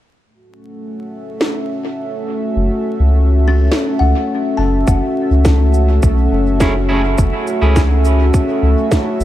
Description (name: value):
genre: ambient dub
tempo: 104 BPM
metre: 4/4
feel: straight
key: F# minor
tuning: A4 = 439 Hz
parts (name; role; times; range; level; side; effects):
- warm analog pad; sustained chords; 0.3-9.2 s; A3 to E5; -18 LUFS; equal; chorus
- electronic snare drum and cabasa; drums; 1.4-9.2 s; none; -22 LUFS; equal; overdrive, dub echo
- soft dub sub bass; bass; 2.6-9.2 s; F#1 to C#2; -13 LUFS; equal; tube saturation
- buzzing kalimba; arpeggios; 3.5-5.9 s; C#4 to A5; -24 LUFS; left 3 dB; dub echo
- electronic kick drum; drums; 4.9-9.0 s; none; -16 LUFS; equal; overdrive
- electric guitar at the edge of break-up; stabs; 6.6-7.8 s; A3 to G#4; -22 LUFS; right 2 dB; dub echo
room: light reverb, digital ambience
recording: vinyl crackle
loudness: -12 LUFS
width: side -13 dB against mid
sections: 0.3-4.9 A section; 4.9-9.2 B section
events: none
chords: 0.3 F#m7